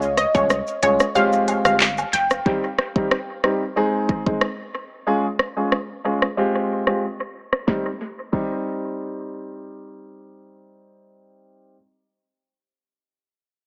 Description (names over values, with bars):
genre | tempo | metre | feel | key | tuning
dancehall | 92 BPM | 4/4 | straight | C phrygian | A4 = 442 Hz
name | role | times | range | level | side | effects
warm grand piano | accompaniment | 0.0-11.7 s | G3 to Ab4 | -25 LUFS | equal | none
punchy sub bass | bass | 0.0-2.4 s | F1 to Db2 | -37 LUFS | equal | none
afro-pop drum kit | drums | 0.0-8.5 s | crash cymbal, handclaps, hi-hat, kick drum, rim click, shaker, snare drum | -25 LUFS | equal | dub echo
analog pluck | melody | 0.2-2.3 s | Db5 to G5 | -24 LUFS | equal | chorus, dub echo
cabasa and woodblock | percussion | 0.2-2.3 s | none | -32 LUFS | equal | none
room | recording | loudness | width
light reverb | echo-heavy mix, low-pass filter, small speaker sound | -21 LUFS | mono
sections
0.0-2.5 A section; 2.5-7.7 B section; 7.7-10.3 C section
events
kick muted 1.2-2.5, 5.1-7.7; filter sweep 2.5-7.7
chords
0.0 Db; 1.2 Fmadd9; 2.5 Cm; 3.8 Ab; 5.1 Db; 6.4 Fmadd9; 7.7 Cm